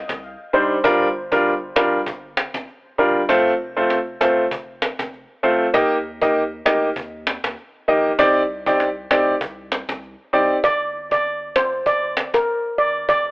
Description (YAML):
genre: dancehall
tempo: 98 BPM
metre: 4/4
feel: swing 56% on 16ths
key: unclear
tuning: A4 = 442 Hz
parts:
  - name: steel pan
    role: melody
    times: 0.0-0.7, 10.6-13.2 s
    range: Bb4 to D5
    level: -20 LUFS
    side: equal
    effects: tape echo
  - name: warm sub bass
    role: bass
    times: 0.0-13.3 s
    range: F1 to Eb2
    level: -43 LUFS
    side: equal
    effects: none
  - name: cajon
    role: drums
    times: 0.1-13.2 s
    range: none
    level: -23 LUFS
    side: equal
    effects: none
  - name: clear concert grand piano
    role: accompaniment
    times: 0.5-10.6 s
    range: G3 to Eb5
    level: -16 LUFS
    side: equal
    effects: none
room: small room ambience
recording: dry, gritty hardware recording, telephone sound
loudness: -17 LUFS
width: side -25 dB against mid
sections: 0.0-10.6 A section; 10.6-13.3 B section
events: none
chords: 0.0 Cmadd9; 0.8 Gm7; 3.3 F; 5.7 Eb; 8.2 Cmadd9; 10.6 Fsus2